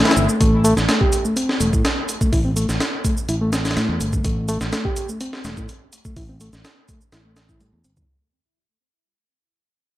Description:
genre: breakbeat, breaks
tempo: 125 BPM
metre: 4/4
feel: straight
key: A minor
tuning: A4 = 440 Hz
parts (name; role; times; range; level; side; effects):
- mellow reed electric piano; riff; 0.0-7.9 s; G3 to G4; -22 LUFS; equal; fast tremolo, low-pass filter, tape echo
- breakbeat sampler-style drum kit; drums; 0.1-8.1 s; hi-hat, kick drum, snare drum; -21 LUFS; equal; none
- fingered electric bass; bass; 0.2-8.0 s; E1 to A2; -22 LUFS; equal; none
- shaker; drums; 0.2-8.1 s; none; -30 LUFS; right 3 dB; none
room: little or no reverb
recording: vinyl crackle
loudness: -17 LUFS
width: side -15 dB against mid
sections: 0.4-8.1 A section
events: fade-out 0.4-8.1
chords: none

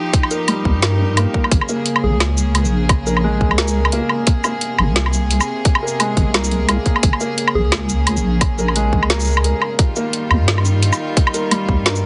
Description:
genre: half-time drum and bass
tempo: 174 BPM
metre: 4/4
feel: swing 58% on 16ths, half-time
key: Bb dorian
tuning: A4 = 440 Hz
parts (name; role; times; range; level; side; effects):
- rich chamber string section; sustained chords; 0.0-12.1 s; C3 to Ab4; -27 LUFS; equal; sidechain pumping
- felt-muted upright piano; arpeggios; 0.0-12.1 s; G3 to Bb4; -26 LUFS; equal; tape echo
- drum and bass drum kit; drums; 0.1-12.0 s; hi-hat, shaker, snare drum, woodblock; -21 LUFS; equal; none
- electronic kick drum; drums; 0.1-11.8 s; none; -18 LUFS; equal; none
- deep soft wobble bass; bass; 0.7-12.1 s; Ab1 to G2; -20 LUFS; equal; chorus
- soft struck synth lead; melody; 2.0-2.2, 7.6-7.7 s; Ab4; -29 LUFS; equal; chorus, tremolo, tape echo
room: light reverb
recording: heavily compressed radio sound, nothing above 10.5 kHz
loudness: -17 LUFS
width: mono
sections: 0.0-12.1 A section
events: none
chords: 0.0 Ebadd9; 1.5 Bbm7; 4.3 Abadd9; 7.0 Bbm7; 9.8 Ebadd9

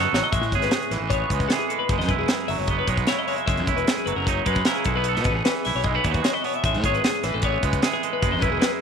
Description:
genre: math rock and midwest emo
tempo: 152 BPM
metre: 4/4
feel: straight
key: unclear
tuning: A4 = 440 Hz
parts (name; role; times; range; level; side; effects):
- twangy electric guitar; accompaniment; 0.0-8.8 s; F#2 to A4; -25 LUFS; right 14 dB; none
- twelve-string electric guitar; arpeggios; 0.0-8.8 s; G#4 to E5; -26 LUFS; left 15 dB; spring reverb
- fuzz fingered electric bass; bass; 0.0-8.6 s; E1 to B2; -27 LUFS; left 1 dB; overdrive
- crisp fusion drum kit; drums; 0.1-8.7 s; hi-hat, kick drum, snare drum; -25 LUFS; equal; none
room: light reverb, studio reverb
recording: 1960s-style stereo with parts hard left and right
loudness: -20 LUFS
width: side -6 dB against mid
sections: 0.3-8.8 A section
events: drum fill 0.0-0.3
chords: 0.3 Amaj9; 1.9 F#9sus4; 3.5 F#13; 4.9 B7sus4; 6.6 Amaj9; 8.2 F#9sus4

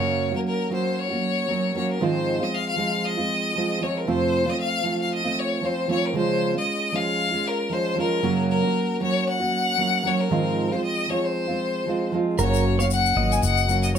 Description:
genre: acoustic pop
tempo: 115 BPM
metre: 4/4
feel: swing 55% on 16ths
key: unclear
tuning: A4 = 441 Hz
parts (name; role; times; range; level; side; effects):
- bright violin; melody; 0.0-14.0 s; Bb4 to Ab5; -25 LUFS; left 4 dB; none
- fingerpicked steel-string acoustic guitar; accompaniment; 0.0-14.0 s; F2 to Gb4; -24 LUFS; right 3 dB; none
- clean electric guitar; arpeggios; 12.4-14.0 s; Bb4 to Eb5; -28 LUFS; right 6 dB; tremolo
- vintage muted fingered electric bass; bass; 12.4-14.0 s; Gb1 to Ab1; -23 LUFS; left 2 dB; none
- egg shaker; percussion; 12.4-14.0 s; none; -32 LUFS; left 11 dB; none
room: moderate small room reverb, RT60 0.5 s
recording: none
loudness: -21 LUFS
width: side -8 dB against mid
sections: 0.0-12.4 A section; 12.4-14.0 B section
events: none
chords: 0.0 Gb; 2.0 Ab6; 4.1 F; 6.2 Db; 8.2 Gb; 10.3 Ab6; 12.4 Gb

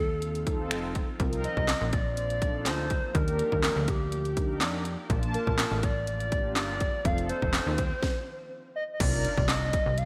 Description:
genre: dance-pop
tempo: 123 BPM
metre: 4/4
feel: straight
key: C dorian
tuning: A4 = 435 Hz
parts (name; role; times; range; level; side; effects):
- hollow clarinet-like synth lead; melody; 0.0-10.1 s; G4 to F5; -34 LUFS; equal; chorus, digital delay
- glassy FM pad; sustained chords; 0.1-10.1 s; D3 to D5; -46 LUFS; equal; none
- plucky analog bass; bass; 0.0-10.1 s; F1 to F2; -34 LUFS; equal; sidechain pumping
- house drum kit; drums; 0.2-10.1 s; crash cymbal, finger snaps, handclaps, hi-hat, kick drum, snare drum; -32 LUFS; equal; overdrive, gated reverb
- mellow synth brass; accompaniment; 0.5-9.7 s; Bb3 to A5; -39 LUFS; equal; chorus, sidechain pumping
- swell and impact; sound effects; 7.2-10.1 s; none; -44 LUFS; equal; none
room: moderate lush hall reverb, RT60 2.2 s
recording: bright 1980s-style digital production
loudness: -28 LUFS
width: mono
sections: 0.0-9.0 A section; 9.0-10.1 B section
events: stop 8.0-9.0; impact 9.0-10.1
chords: 0.0 F7; 1.2 Cm11; 3.1 Ebmaj7; 5.1 Bbmaj7; 7.0 F7; 9.0 Cm11

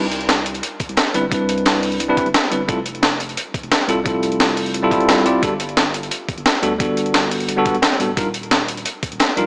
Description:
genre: liquid drum and bass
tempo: 175 BPM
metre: 4/4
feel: straight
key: C major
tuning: A4 = 440 Hz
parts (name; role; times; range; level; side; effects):
- bell-like tine electric piano; accompaniment; 0.0-9.5 s; G3 to D5; -22 LUFS; equal; digital delay
- saturated sub bass; bass; 0.0-9.5 s; D1 to D2; -34 LUFS; equal; tube saturation
- breakbeat sampler-style drum kit; drums; 0.1-9.4 s; hi-hat, snare drum; -22 LUFS; equal; none
- crunchy breakbeat drum kit; drums; 0.1-9.5 s; hi-hat, snare drum; -26 LUFS; equal; high-pass filter on hats, high-pass filter on snare, high-pass filter on room
- electronic kick drum; drums; 0.8-9.1 s; none; -28 LUFS; equal; none
room: moderate huge ambient reverb, RT60 4.2 s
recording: small speaker sound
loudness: -18 LUFS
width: mono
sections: 0.0-9.5 A section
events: none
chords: 0.0 Cmaj9; 2.7 Fmaj9; 5.4 Gmaj9; 8.2 Ebmaj9

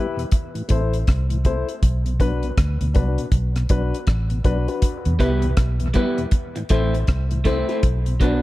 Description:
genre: dub reggae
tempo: 80 BPM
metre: 4/4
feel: swing 62% on 16ths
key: B phrygian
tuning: A4 = 438 Hz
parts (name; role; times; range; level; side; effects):
- mellow tonewheel organ; accompaniment; 0.0-8.3 s; E2 to E4; -30 LUFS; left 1 dB; chorus vibrato, slow rotary speaker, dub echo
- dark upright piano; stabs; 0.0-8.4 s; D4 to C5; -27 LUFS; left 5 dB; dub echo
- deep reggae drum kit; drums; 0.2-8.4 s; hi-hat, kick drum, rim click; -20 LUFS; equal; none
- vintage muted fingered electric bass; bass; 0.7-8.4 s; A1 to E2; -21 LUFS; equal; none
- electric guitar through a small old amp; accompaniment; 5.2-8.4 s; F#3 to E4; -26 LUFS; right 4 dB; dub echo
room: small room ambience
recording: dark, warm production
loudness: -18 LUFS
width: side -17 dB against mid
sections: 0.0-8.4 A section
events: break 0.0-4.8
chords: 0.3 Am; 1.8 Bm; 4.8 Em; 6.3 Am; 7.8 Bm

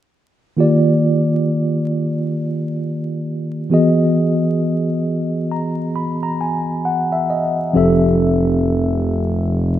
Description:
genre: R&B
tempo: 67 BPM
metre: 4/4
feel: swing 60% on 16ths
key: unclear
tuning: A4 = 440 Hz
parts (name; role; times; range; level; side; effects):
- mellow tine electric piano; accompaniment; 0.6-9.8 s; Eb3 to B5; -16 LUFS; equal; medium stereo tremolo
- smooth gliding synth bass; bass; 7.8-9.8 s; F1; -18 LUFS; equal; none
room: moderate lush hall reverb, RT60 2.3 s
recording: rough home demo mix, vinyl crackle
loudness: -16 LUFS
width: side -12 dB against mid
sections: 0.6-9.8 A section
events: tine electric piano fill 5.1-7.7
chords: 0.6 Ebmaj9; 3.7 Emaj9; 7.7 Fmaj9

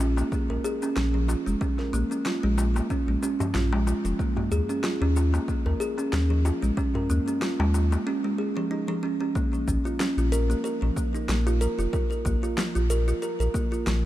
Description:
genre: organic downtempo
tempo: 93 BPM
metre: 4/4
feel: swing 55% on 16ths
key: Bb minor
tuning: A4 = 439 Hz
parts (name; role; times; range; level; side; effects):
- kalimba; arpeggios; 0.0-14.0 s; F3 to Bb4; -27 LUFS; right 1 dB; ping-pong delay
- warm sub bass; bass; 0.0-14.1 s; F1 to Eb2; -24 LUFS; equal; none
- electronic shaker and snare drum; drums; 0.0-14.0 s; none; -35 LUFS; equal; studio reverb
- darbuka; percussion; 0.0-8.0 s; none; -36 LUFS; left 3 dB; none
- electronic kick drum; drums; 0.3-13.7 s; none; -29 LUFS; equal; studio reverb
room: light reverb, studio reverb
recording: dark, warm production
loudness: -23 LUFS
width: side -14 dB against mid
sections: 0.0-9.4 A section; 9.4-14.1 B section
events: break 8.1-9.4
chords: 0.0 Bbm7; 4.2 Eb7sus4; 9.4 Bb5

